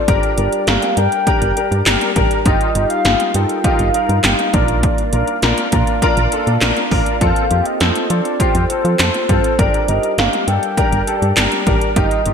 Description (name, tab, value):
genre	synth-pop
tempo	101 BPM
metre	4/4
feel	straight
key	unclear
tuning	A4 = 441 Hz
part	soft octave-layered synth lead	melody	0.0-12.3 s	C5 to G5	-20 LUFS	equal	chorus, phaser, ping-pong delay
part	glass harmonica	sustained chords	0.0-12.3 s	G3 to F5	-24 LUFS	right 2 dB	none
part	warm concert grand piano	accompaniment	0.1-12.3 s	C4 to Bb4	-20 LUFS	left 3 dB	ensemble chorus
part	solid FM bass	bass	0.1-12.3 s	G1 to F3	-18 LUFS	equal	none
part	80s electronic pad drums	drums	0.1-12.3 s	handclaps, hi-hat, kick drum, snare drum	-17 LUFS	equal	gated reverb
room	moderate lush hall reverb, RT60 2.3 s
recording	bright 1980s-style digital production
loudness	-13 LUFS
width	side -6 dB against mid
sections	0.0-12.3 A section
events	none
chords	0.1 Gm; 2.5 Ebadd9/G; 4.5 Bb; 7.2 F; 9.6 Gm